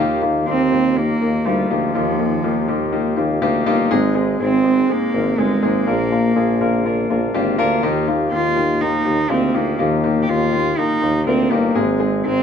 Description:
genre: piano-driven pop.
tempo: 122 BPM.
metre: 4/4.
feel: straight.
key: Eb major.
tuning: A4 = 435 Hz.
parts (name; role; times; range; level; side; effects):
clear baby grand piano; accompaniment; 0.0-12.4 s; Ab2 to Bb4; -19 LUFS; left 2 dB; none.
clear tuba; bass; 0.0-12.4 s; G1 to Eb2; -21 LUFS; equal; none.
rich cello; melody; 0.5-12.4 s; F3 to G4; -20 LUFS; right 3 dB; none.
room: moderate small room ambience, RT60 0.5 s.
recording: band playing live in one room.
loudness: -15 LUFS.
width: side -7 dB against mid.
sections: 0.0-12.4 A section.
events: none.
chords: 0.0 Ebadd9; 3.9 Ab; 5.9 Bb; 7.8 Ebadd9; 11.8 Ab.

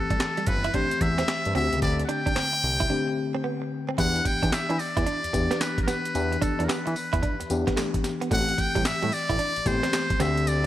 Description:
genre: R&B, new jack swing.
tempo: 111 BPM.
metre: 4/4.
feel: swing 65% on 16ths.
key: E minor.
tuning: A4 = 440 Hz.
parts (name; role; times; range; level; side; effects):
trumpet with metal mute; melody; 0.0-10.7 s; A4 to G5; -28 LUFS; equal; tube saturation.
mellow FM electric piano; accompaniment; 0.0-10.7 s; D3 to G4; -30 LUFS; left 4 dB; chorus.
direct-recorded clean electric guitar; riff; 0.1-10.7 s; G3 to E4; -33 LUFS; right 6 dB; lush chorus.
fat analog bass; bass; 0.1-10.7 s; G1 to E3; -28 LUFS; equal; none.
breakbeat sampler-style drum kit; drums; 0.1-10.7 s; handclaps, hi-hat, kick drum, snare drum, tambourine; -28 LUFS; equal; none.
room: light reverb.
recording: bright 1980s-style digital production.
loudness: -23 LUFS.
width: side -13 dB against mid.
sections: 0.0-4.0 A section; 4.0-10.7 B section.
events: break 2.9-4.0.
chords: 0.0 Am7; 1.6 D7sus4; 4.0 Em7; 8.3 Am7.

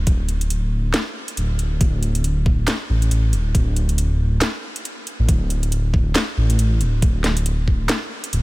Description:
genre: deep dubstep.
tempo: 138 BPM.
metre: 4/4.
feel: swing 58% on 16ths, half-time.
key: unclear.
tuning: A4 = 440 Hz.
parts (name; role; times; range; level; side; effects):
dark detuned saw bass; bass; 0.0-8.4 s; D1 to A1; -19 LUFS; equal; none.
electronic kick drum; drums; 0.1-7.8 s; none; -17 LUFS; equal; studio reverb.
garage drum kit; drums; 0.1-8.4 s; handclaps, hi-hat, snare drum; -25 LUFS; equal; studio reverb.
room: digital ambience.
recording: none.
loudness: -17 LUFS.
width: side -20 dB against mid.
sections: 0.0-8.4 A section.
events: none.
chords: none.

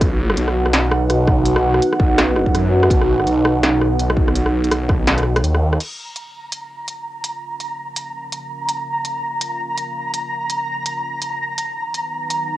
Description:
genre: half-time drum and bass.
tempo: 166 BPM.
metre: 4/4.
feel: swing 58% on 16ths, half-time.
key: Bb phrygian.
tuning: A4 = 440 Hz.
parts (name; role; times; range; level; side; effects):
dark analog pad; sustained chords; 0.0-12.6 s; Db4 to F#5; -21 LUFS; right 1 dB; chorus, sidechain pumping, cassette tape.
phased detuned saw bass; bass; 0.0-5.8 s; B1 to F#2; -19 LUFS; equal; phaser.
electronic kick drum; drums; 0.0-5.0 s; none; -19 LUFS; equal; distortion, studio ambience, cassette tape.
industrial drum kit; drums; 0.0-12.4 s; crash cymbal, hi-hat, rim click, snare drum; -20 LUFS; equal; studio ambience, cassette tape.
flickering grainy texture; texture; 6.1-12.6 s; Bb5; -24 LUFS; equal; built-in reverb, cassette tape.
room: wet booth ambience, RT60 0.2 s.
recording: home recording on cassette.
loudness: -16 LUFS.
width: side -14 dB against mid.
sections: 0.0-5.8 A section; 5.8-12.6 B section.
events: kick drops out 5.1-5.8; filter sweep on analog synth pad 5.8-12.6.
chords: 0.0 B; 5.8 Bbm; 11.6 B.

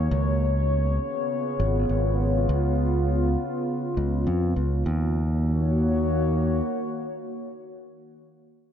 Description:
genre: ambient dub.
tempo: 101 BPM.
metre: 4/4.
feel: straight.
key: Eb minor.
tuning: A4 = 443 Hz.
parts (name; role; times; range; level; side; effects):
warbly tape-like pad; sustained chords; 0.0-8.0 s; Db3 to Db5; -26 LUFS; left 1 dB; chorus, built-in reverb.
modern bright fingered electric bass; bass; 0.0-6.6 s; Ab1 to F2; -23 LUFS; equal; none.
room: light reverb.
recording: dark, warm production, nothing above 7.7 kHz.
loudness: -22 LUFS.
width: side -9 dB against mid.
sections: 0.0-4.9 A section; 4.9-7.2 B section.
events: none.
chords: 0.1 Db7; 4.9 Ebm7.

